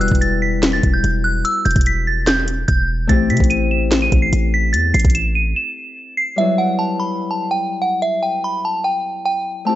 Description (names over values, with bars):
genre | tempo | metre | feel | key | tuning
hip hop, trap | 146 BPM | 4/4 | half-time | E minor | A4 = 440 Hz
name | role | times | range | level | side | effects
delicate synth tine bell | melody | 0.0-9.8 s | E5 to E7 | -19 LUFS | right 1 dB | chorus
Celtic harp | accompaniment | 0.0-9.8 s | F#3 to G4 | -23 LUFS | left 5 dB | none
hard-hitting 808-style bass | bass | 0.0-5.5 s | E1 to C3 | -19 LUFS | equal | none
trap drum kit | drums | 0.0-5.2 s | hi-hat, kick drum, snare drum | -17 LUFS | equal | none
room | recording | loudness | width
little or no reverb | nothing above 7.9 kHz | -15 LUFS | side -14 dB against mid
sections
0.0-6.4 A section; 6.4-9.8 B section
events
break 5.6-6.4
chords
0.0 Emadd9; 3.1 Am7; 6.4 Emadd9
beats
0.22 0.63 1.04 | 1.45 1.86 2.27 2.68 | 3.09 3.50 3.92 4.33 | 4.74 5.15 5.56 5.97 | 6.38 6.79 7.20 7.61 | 8.03 8.44 8.85 9.26 | 9.67